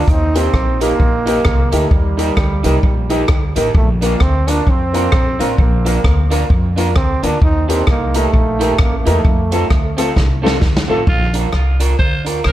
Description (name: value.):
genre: ska.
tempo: 131 BPM.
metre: 4/4.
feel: swing 60% on 8ths.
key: Bb major.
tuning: A4 = 444 Hz.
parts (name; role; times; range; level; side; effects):
clear trombone; melody; 0.0-10.0 s; G3 to Eb4; -21 LUFS; right 2 dB; dub echo.
electric guitar through a small old amp; accompaniment; 0.0-12.4 s; C4 to Bb4; -22 LUFS; right 4 dB; spring reverb, dub echo.
upright bass; bass; 0.0-12.5 s; A1 to F2; -17 LUFS; equal; none.
swinging big-band drum kit; drums; 0.1-12.5 s; hi-hat, kick drum, rim click, snare drum; -16 LUFS; equal; none.
clear upright piano; stabs; 0.3-11.0 s; A3 to Bb4; -21 LUFS; left 4 dB; none.
raspy alto saxophone; melody; 11.1-12.5 s; F4 to C5; -22 LUFS; right 2 dB; dub echo, plate reverb.
room: light reverb.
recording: none.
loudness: -12 LUFS.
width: side -13 dB against mid.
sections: 0.0-11.1 A section; 11.1-12.5 B section.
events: drum fill 10.2-11.1; alto saxophone solo 11.1-12.5.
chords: 0.1 Eb; 3.7 Bb; 7.4 Eb; 9.2 F; 11.1 Bb.